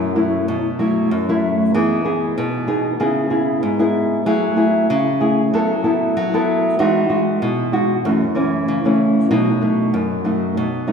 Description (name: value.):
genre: samba.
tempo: 95 BPM.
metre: 4/4.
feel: straight.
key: unclear.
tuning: A4 = 441 Hz.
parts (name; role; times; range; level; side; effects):
nylon-string guitar; solo; 0.0-10.9 s; F#2 to A4; -16 LUFS; equal; none.
room: wet concert hall reverb, RT60 2.1 s.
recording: recorded in a church or concert hall.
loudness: -16 LUFS.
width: side -6 dB against mid.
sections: 0.0-10.9 A section.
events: none.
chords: 0.0 B7sus4; 1.7 Emaj7; 3.0 C#m7; 4.3 F#m9; 5.5 B7sus4/F#; 6.8 Emaj9; 8.0 F#m7; 9.3 B7.